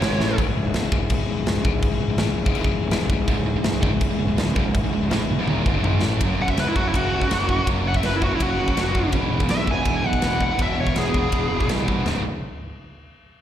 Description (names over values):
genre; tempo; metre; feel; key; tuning
heavy metal; 164 BPM; 4/4; straight; C# minor; A4 = 440 Hz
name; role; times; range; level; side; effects
high-gain lead guitar; melody; 0.0-0.4, 6.4-11.7 s; E4 to G#5; -25 LUFS; equal; distortion, slapback echo, digital delay
pipe organ, flutes; sustained chords; 0.0-6.2 s; C#3 to G#4; -30 LUFS; left 3 dB; none
high-gain distorted guitar; riff; 0.0-0.4, 3.3-12.2 s; C#2 to A3; -27 LUFS; right 10 dB; distortion, slapback echo
sludgy distorted guitar; riff; 0.0-12.2 s; C#2 to A3; -27 LUFS; left 8 dB; overdrive, slapback echo
fuzz fingered electric bass; bass; 0.0-12.2 s; C#1 to C#2; -26 LUFS; equal; overdrive
tight metal drum kit; drums; 0.0-12.2 s; crash cymbal, kick drum, ride cymbal, snare drum, toms; -24 LUFS; equal; none
room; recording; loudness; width
little or no reverb; live gig heard through the venue's PA, recital hall reverb; -19 LUFS; side -10 dB against mid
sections
0.4-6.2 A section; 6.2-12.1 B section; 12.1-13.4 C section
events
drum fill 0.2, 5.5-6.2; lead electric guitar solo 6.2-12.1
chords
0.4 C#m; 6.2 F#5; 9.1 E; 12.1 C#5